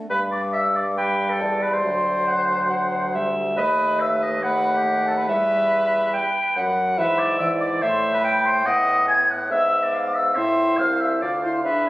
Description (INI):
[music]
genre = quick classical-period movement for wind quintet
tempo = 140 BPM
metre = 4/4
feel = rubato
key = G major, A minor from 7.0 s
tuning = A4 = 441 Hz
[part]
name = mellow French horn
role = accompaniment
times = 0.0-11.9 s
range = E3 to F4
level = -30 LUFS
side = equal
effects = none
[part]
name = mellow hollow concert flute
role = melody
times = 0.1-11.9 s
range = G5 to G#6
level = -24 LUFS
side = left 1 dB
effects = none
[part]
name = warm oboe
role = second line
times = 0.1-11.9 s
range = G4 to G#5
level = -25 LUFS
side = equal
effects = none
[part]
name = clear bassoon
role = bass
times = 0.1-11.9 s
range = C2 to A2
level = -28 LUFS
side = equal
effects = none
[part]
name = warm clarinet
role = accompaniment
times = 1.0-11.9 s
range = B4 to G5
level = -22 LUFS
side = equal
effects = none
[sound]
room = moderate recital hall reverb, RT60 1.7 s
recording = recorded on a phone in the room, studio reverb, compression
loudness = -18 LUFS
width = side -17 dB against mid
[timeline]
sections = 0.1-11.9 A section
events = none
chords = 0.1 G5; 1.8 D7; 3.6 B7/D#; 5.3 Em; 7.0 E7/G#; 7.8 A5; 8.7 B7/A; 9.5 E/G#; 10.4 Am; 11.2 Dm